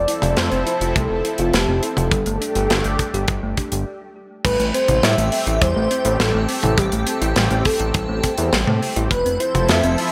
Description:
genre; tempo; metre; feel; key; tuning
synthwave; 103 BPM; 4/4; straight; A minor; A4 = 438 Hz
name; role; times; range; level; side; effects
warm velvety synth lead; melody; 0.0-10.1 s; F4 to E5; -26 LUFS; equal; chorus, tape echo
lush unison pad; sustained chords; 0.0-10.1 s; F3 to A4; -29 LUFS; equal; chorus, phaser, sidechain pumping
fat analog bass; bass; 0.0-10.0 s; F1 to A2; -24 LUFS; equal; sidechain pumping
thumb-piano-like synth pluck; arpeggios; 0.1-10.1 s; G3 to G4; -29 LUFS; equal; chorus, tape echo
tight metal drum kit; drums; 0.1-10.1 s; crash cymbal, hi-hat, snare drum, toms; -25 LUFS; equal; gated reverb
kick drum; drums; 1.0-9.2 s; none; -24 LUFS; equal; none
airy dreamy lead; second line; 4.5-10.1 s; G4 to E5; -30 LUFS; equal; chorus, tape echo
room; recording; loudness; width
light reverb, small room ambience; none; -19 LUFS; mono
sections
0.0-4.4 A section; 4.4-10.1 B section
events
filter sweep on synth arpeggio sound 0.0-4.4; stop 3.9-4.4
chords
0.0 Fmaj7; 2.1 Gsus2; 4.4 Am7; 9.1 Fmaj7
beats
0.37 0.95 1.54 | 2.12 2.70 3.28 3.87 | 4.45 5.03 5.61 6.20 | 6.78 7.36 7.94 8.53 | 9.11 9.69

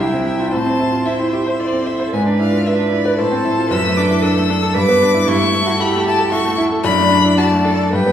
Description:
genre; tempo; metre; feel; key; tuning
quick classical-period movement for piano quartet; 114 BPM; 3/4; rubato; D major from 3.7 s; A4 = 441 Hz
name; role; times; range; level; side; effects
warm violin; melody; 0.0-8.1 s; D5 to E6; -20 LUFS; left 4 dB; none
warm cello; second line; 0.0-8.1 s; C4 to B4; -20 LUFS; right 4 dB; none
warm violin; second line; 0.0-8.1 s; A4 to E5; -24 LUFS; left 1 dB; none
bright concert grand piano; accompaniment; 0.0-8.1 s; C2 to C5; -16 LUFS; equal; none
room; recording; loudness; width
wet recital hall reverb, RT60 1.5 s; heard from further back in the room; -13 LUFS; side -10 dB against mid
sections
0.0-8.1 A section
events
none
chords
0.0 C; 0.5 Am; 2.1 E7/G#; 3.2 Am; 3.7 D/F#; 4.8 G; 5.3 A7/G; 6.8 D/F#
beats
| 0.53 1.06 1.60 | 2.13 2.66 3.19 | 3.71 4.23 4.75 | 5.28 5.80 6.32 | 6.84 7.38 7.93

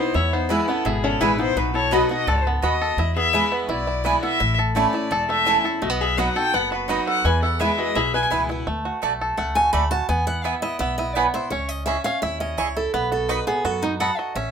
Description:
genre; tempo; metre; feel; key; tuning
bluegrass; 169 BPM; 4/4; straight; E major; A4 = 440 Hz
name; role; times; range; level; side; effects
rich fiddle; melody; 0.0-8.2 s; G#4 to G#5; -24 LUFS; left 3 dB; none
lap resonator guitar; second line; 0.0-8.3 s; B3 to B4; -27 LUFS; left 4 dB; none
picked steel-string acoustic guitar; accompaniment; 0.0-14.5 s; E2 to B5; -26 LUFS; equal; none
bluegrass banjo; arpeggios; 0.0-14.5 s; E3 to A4; -26 LUFS; right 2 dB; none
upright bass; bass; 0.1-14.5 s; E1 to F#2; -27 LUFS; equal; none
mandolin; stabs; 0.5-14.1 s; A3 to C#6; -24 LUFS; right 5 dB; none
room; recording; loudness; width
light reverb; minimal, uncompressed stereo recording; -19 LUFS; side -7 dB against mid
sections
0.0-8.7 A section; 8.7-14.5 B section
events
steel-string acoustic guitar solo 8.7-14.5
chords
0.0 E; 1.6 B; 3.0 E; 4.4 A; 5.8 B; 7.2 E; 8.7 D; 10.1 E; 11.5 C#madd9; 12.9 B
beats
| 0.15 0.50 0.86 1.21 | 1.57 1.92 2.28 2.63 | 2.99 3.34 3.70 4.05 | 4.41 4.76 5.12 5.47 | 5.83 6.18 6.54 6.89 | 7.25 7.60 7.96 8.31 | 8.67 9.03 9.38 9.74 | 10.09 10.45 10.80 11.16 | 11.52 11.87 12.23 12.58 | 12.94 13.29 13.65 14.00 | 14.36

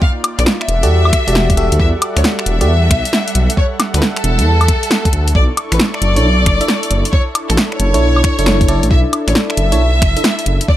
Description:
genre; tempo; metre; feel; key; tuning
UK garage, two-step garage; 135 BPM; 4/4; swing 66% on 16ths; B minor; A4 = 442 Hz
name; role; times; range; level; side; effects
rich studio violin section; melody; 0.0-10.8 s; A4 to F5; -19 LUFS; left 1 dB; ping-pong delay
warm analog pad; sustained chords; 0.0-10.8 s; G3 to C#6; -25 LUFS; right 2 dB; chorus, sidechain pumping
electronic kick drum; drums; 0.0-10.8 s; none; -14 LUFS; equal; overdrive
punchy analog drum machine; drums; 0.2-10.7 s; finger snaps, hi-hat, snare drum, woodblock; -16 LUFS; equal; overdrive
dark detuned saw bass; bass; 0.4-10.6 s; E1 to E2; -14 LUFS; equal; none
FM electric piano; stabs; 0.8-2.7, 6.2-10.2 s; D4 to E5; -19 LUFS; equal; chorus, digital delay
room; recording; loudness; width
little or no reverb; faint mains hum; -11 LUFS; side -13 dB against mid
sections
0.0-10.8 A section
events
none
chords
0.0 Cm11 (rootless); 0.7 Em11; 5.4 Bm11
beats
| 0.02 0.46 0.91 1.35 | 1.79 2.24 2.68 3.13 | 3.57 4.02 4.46 4.91 | 5.35 5.79 6.24 6.68 | 7.13 7.57 8.02 8.46 | 8.91 9.35 9.79 10.24 | 10.68

